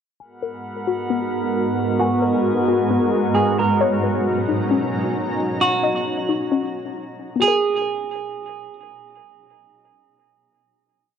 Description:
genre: hip hop, atmospheric cloud-rap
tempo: 133 BPM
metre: 4/4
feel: half-time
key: G# minor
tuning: A4 = 436 Hz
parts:
  - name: shimmering ambient pad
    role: sustained chords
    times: 0.7-5.6 s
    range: G#2 to A#5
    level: -21 LUFS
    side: right 1 dB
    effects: chorus, built-in reverb, low-pass filter
  - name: soft round pluck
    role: arpeggios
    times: 0.2-11.2 s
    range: B3 to C#6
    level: -24 LUFS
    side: left 7 dB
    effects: chorus, low-pass filter, plate reverb, analog delay
  - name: drifting glass-harmonics texture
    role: texture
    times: 0.3-3.8 s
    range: G#3 to A#4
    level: -30 LUFS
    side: equal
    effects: chorus, built-in reverb
  - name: semi-hollow electric guitar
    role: melody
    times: 2.0-8.7 s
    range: F#4 to A#4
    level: -22 LUFS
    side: right 4 dB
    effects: low-pass filter, cassette tape, analog delay
room: moderate studio ambience, RT60 0.5 s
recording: home recording on cassette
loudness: -18 LUFS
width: side -8 dB against mid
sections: 0.2-7.4 breakdown; 7.4-11.0 final chord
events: filter sweep 0.2-7.4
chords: 0.2 G#m9; 3.8 Bmaj9; 5.6 D#m7; 7.4 G#m9

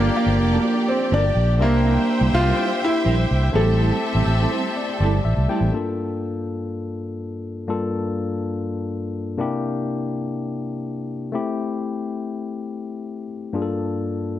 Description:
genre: disco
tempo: 123 BPM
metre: 4/4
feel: straight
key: G dorian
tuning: A4 = 440 Hz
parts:
  - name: clear grand piano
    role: melody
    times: 0.0-5.2 s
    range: Bb3 to A4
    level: -22 LUFS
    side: equal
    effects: none
  - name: clear studio string section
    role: second line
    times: 0.0-5.7 s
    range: Bb3 to G5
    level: -27 LUFS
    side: equal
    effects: none
  - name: barky tine electric piano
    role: accompaniment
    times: 0.0-14.4 s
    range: G2 to G5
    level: -26 LUFS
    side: left 3 dB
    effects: overdrive
  - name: mellow electric guitar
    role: accompaniment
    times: 0.0-5.7 s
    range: G3 to C5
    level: -28 LUFS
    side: right 6 dB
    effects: ensemble chorus
  - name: clear studio string section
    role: sustained chords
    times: 0.0-5.7 s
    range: G4 to A5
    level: -31 LUFS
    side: left 1 dB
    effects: none
  - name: fingered electric bass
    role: bass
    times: 0.0-5.7 s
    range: F1 to C2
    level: -19 LUFS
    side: equal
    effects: none
room: studio reverb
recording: dark, warm production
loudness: -20 LUFS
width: side -12 dB against mid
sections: 0.0-5.7 A section; 5.7-14.4 B section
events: tine electric piano fill 4.3-5.7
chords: 0.0 Gm7; 1.6 C7; 3.5 Am7; 5.7 Gm7; 9.4 C7; 11.3 Am7; 13.5 Gm7

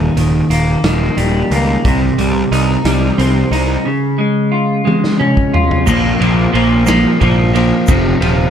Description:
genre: indie rock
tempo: 60 BPM (dotted quarters)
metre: 6/8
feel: straight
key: unclear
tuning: A4 = 440 Hz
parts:
  - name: clean electric guitar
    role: riff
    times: 0.0-8.5 s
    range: Eb2 to F4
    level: -13 LUFS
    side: equal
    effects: double-tracked left and right
  - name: fuzz picked electric bass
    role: bass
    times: 0.0-8.5 s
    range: Eb1 to Db2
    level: -16 LUFS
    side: equal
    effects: overdrive
  - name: raw garage drum kit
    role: drums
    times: 0.2-8.4 s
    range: crash cymbal, hi-hat, kick drum, ride cymbal, snare drum, toms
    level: -18 LUFS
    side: equal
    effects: none
  - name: egg shaker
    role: percussion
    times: 5.9-8.0 s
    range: none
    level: -30 LUFS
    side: left 11 dB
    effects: none
room: light reverb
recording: dark, warm production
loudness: -11 LUFS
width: side -8 dB against mid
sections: 0.0-5.9 A section; 5.9-8.5 B section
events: drum fill 4.9-5.9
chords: 0.0 Eb; 1.9 Cm; 3.9 Db; 5.9 Bb5; 7.9 F5

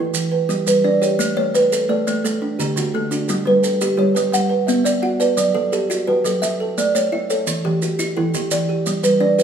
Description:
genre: southern african traditional, mbira-style interlocking cycle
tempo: 115 BPM (dotted quarters)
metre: 12/8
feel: straight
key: A mixolydian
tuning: A4 = 438 Hz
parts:
  - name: kalimba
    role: arpeggios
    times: 0.0-9.4 s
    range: D3 to F#5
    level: -19 LUFS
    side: left 1 dB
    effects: none
  - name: kalimba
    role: arpeggios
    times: 0.0-9.4 s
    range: D3 to F#5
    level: -20 LUFS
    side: right 4 dB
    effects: none
  - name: maracas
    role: percussion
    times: 0.1-9.4 s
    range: none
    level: -27 LUFS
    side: right 5 dB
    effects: none
room: moderate recital hall reverb, RT60 1.5 s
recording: small room ambience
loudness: -16 LUFS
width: side -8 dB against mid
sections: 0.0-1.2 A section; 1.2-9.4 B section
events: none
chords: 0.1 G; 1.2 A; 2.2 D; 3.3 G; 4.3 Bm; 5.4 F#m; 6.4 A; 7.5 Em; 8.5 G

